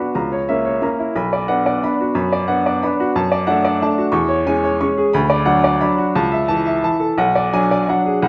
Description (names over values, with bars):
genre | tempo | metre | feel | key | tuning
classical, piano waltz | 178 BPM | 3/4 | rubato | unclear | A4 = 439 Hz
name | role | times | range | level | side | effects
bright upright piano | solo | 0.0-8.3 s | B1 to C#6 | -18 LUFS | equal | none
room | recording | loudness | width
wet recital hall reverb, RT60 1.4 s | none | -18 LUFS | mono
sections
0.0-8.3 A section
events
none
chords
0.2 A#dim/C#; 1.2 Bm; 3.1 D/F#; 4.1 C#m/E; 5.1 Bm/D; 6.2 A/C#; 7.2 G#m7b5/B